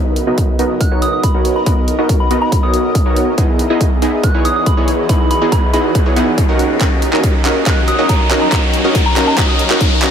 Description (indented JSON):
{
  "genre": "future bass",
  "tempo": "140 BPM",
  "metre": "4/4",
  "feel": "half-time",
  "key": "B major",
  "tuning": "A4 = 440 Hz",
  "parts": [
    { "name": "shimmering ambient pad", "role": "sustained chords", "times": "0.0-10.1 s", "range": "E3 to D#5", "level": "-24 LUFS", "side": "equal", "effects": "chorus, built-in reverb, vintage 12-bit sampler grit, sidechain pumping" },
    { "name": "supersaw stab", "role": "riff", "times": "0.0-10.1 s", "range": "B3 to F#5", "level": "-16 LUFS", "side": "right 1 dB", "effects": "sidechain pumping, low-pass filter" },
    { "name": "fat analog bass", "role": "bass", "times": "0.0-10.1 s", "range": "B1 to E2", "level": "-26 LUFS", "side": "equal", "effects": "none" },
    { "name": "riser", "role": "sound effects", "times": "0.0-10.1 s", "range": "none", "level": "-23 LUFS", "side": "equal", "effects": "none" },
    { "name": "pop drum kit", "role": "drums", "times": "0.2-10.1 s", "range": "handclaps, hi-hat", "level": "-21 LUFS", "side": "right 1 dB", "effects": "none" },
    { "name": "electronic kick drum", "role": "drums", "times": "0.4-9.9 s", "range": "none", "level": "-15 LUFS", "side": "equal", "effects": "none" },
    { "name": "soft synth bell", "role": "melody", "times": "0.8-10.1 s", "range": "A#5 to F#6", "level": "-20 LUFS", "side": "left 1 dB", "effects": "chorus, phaser, sidechain pumping, ping-pong delay" }
  ],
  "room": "moderate digital room reverb, RT60 0.9 s, digital ambience",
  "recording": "none",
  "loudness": "-11 LUFS",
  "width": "side -8 dB against mid",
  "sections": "0.0-10.1 A section",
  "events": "build-up 0.0-10.1; riser 0.0-10.1; filter sweep on supersaw synth 0.0-10.1; drum fill 6.8-10.1",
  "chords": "0.0 Bmaj7; 3.4 Emaj7; 6.6 D#m7"
}